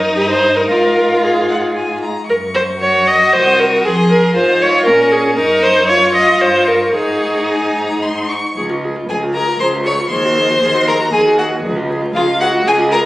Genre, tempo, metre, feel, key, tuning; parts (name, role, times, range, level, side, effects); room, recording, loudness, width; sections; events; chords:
quick classical-period movement for string quartet; 116 BPM; 3/4; rubato; Db major; A4 = 444 Hz
rich violin; melody; 0.0-13.0 s; Eb5 to Eb6; -21 LUFS; left 2 dB
rich violin; second line; 0.0-13.0 s; Db4 to Db5; -16 LUFS; equal
rich cello; bass; 0.0-13.1 s; C2 to Bb2; -21 LUFS; right 1 dB
warm viola; accompaniment; 0.2-13.1 s; F4 to Eb5; -14 LUFS; equal
wet recital hall reverb, RT60 1.6 s; recorded on a phone in the room, club reverb, vinyl crackle; -11 LUFS; side -17 dB against mid
0.0-8.6 A section; 8.6-13.1 B section
0.2 Eb/G; 0.7 Gbmaj9/Ab (rootless); 1.8 Fmadd11/Ab; 2.3 Gb5; 3.3 Cm7b5; 3.9 Fm; 4.9 Bbm7; 5.4 Ebm7/Gb; 6.4 Gm7b5; 6.9 Absus4; 8.6 Db; 10.1 Ab7/Eb; 11.7 Db